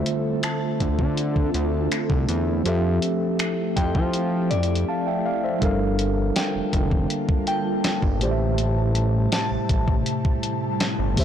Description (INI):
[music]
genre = contemporary R&B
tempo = 81 BPM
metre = 4/4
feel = straight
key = G dorian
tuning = A4 = 441 Hz
[part]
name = mellow tine electric piano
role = accompaniment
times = 0.0-11.2 s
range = A2 to A5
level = -26 LUFS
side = right 1 dB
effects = medium stereo tremolo
[part]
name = ethereal airy pad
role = sustained chords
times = 0.0-11.2 s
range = C3 to A5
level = -28 LUFS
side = left 1 dB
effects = ensemble chorus, built-in reverb
[part]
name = fat analog bass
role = bass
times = 0.0-11.2 s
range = F1 to F3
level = -24 LUFS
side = equal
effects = none
[part]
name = clean 12-bit digital drum machine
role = drums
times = 0.1-11.2 s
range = finger snaps, hi-hat, kick drum, snare drum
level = -24 LUFS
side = equal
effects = none
[part]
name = glassy synth bell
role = texture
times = 0.4-10.4 s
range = D5 to A5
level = -32 LUFS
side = left 2 dB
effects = chorus, tremolo, tape echo
[sound]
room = light reverb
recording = blown-out, overdriven recording, overdrive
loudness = -20 LUFS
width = side -9 dB against mid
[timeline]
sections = 0.0-5.6 A section; 5.6-11.2 B section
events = silent gap 4.9-5.6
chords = 0.0 Dm7; 2.7 Fmaj9; 5.6 Gm9; 8.2 Am7